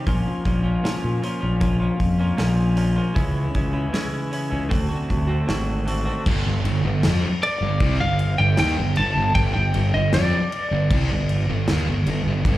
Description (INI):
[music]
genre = quiet-loud alternative rock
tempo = 78 BPM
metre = 4/4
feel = straight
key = unclear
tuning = A4 = 444 Hz
[part]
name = twelve-string electric guitar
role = arpeggios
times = 0.0-6.2 s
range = Bb2 to F#4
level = -26 LUFS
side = equal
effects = tape echo
[part]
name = fuzz fingered electric bass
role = bass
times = 0.1-12.6 s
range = G1 to Bb2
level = -22 LUFS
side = equal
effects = overdrive
[part]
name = big rock drum kit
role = drums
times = 0.1-12.6 s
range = crash cymbal, hi-hat, kick drum, snare drum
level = -26 LUFS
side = equal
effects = none
[part]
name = thick fuzz guitar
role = riff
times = 6.3-12.6 s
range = G2 to C4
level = -24 LUFS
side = right 1 dB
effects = distortion, slapback echo
[part]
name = twelve-string electric guitar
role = melody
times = 7.4-12.0 s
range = D5 to A5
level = -24 LUFS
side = left 1 dB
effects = slapback echo
[sound]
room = studio reverb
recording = live gig heard through the venue's PA, club reverb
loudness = -19 LUFS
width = side -15 dB against mid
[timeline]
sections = 0.0-6.3 A section; 6.3-12.6 B section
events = none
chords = 0.1 Bbm; 3.2 C#m; 4.7 D7; 6.3 G5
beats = | 0.06 0.84 1.61 2.39 | 3.17 3.94 4.71 5.49 | 6.26 7.04 7.81 8.59 | 9.36 10.13 10.90 11.68 | 12.45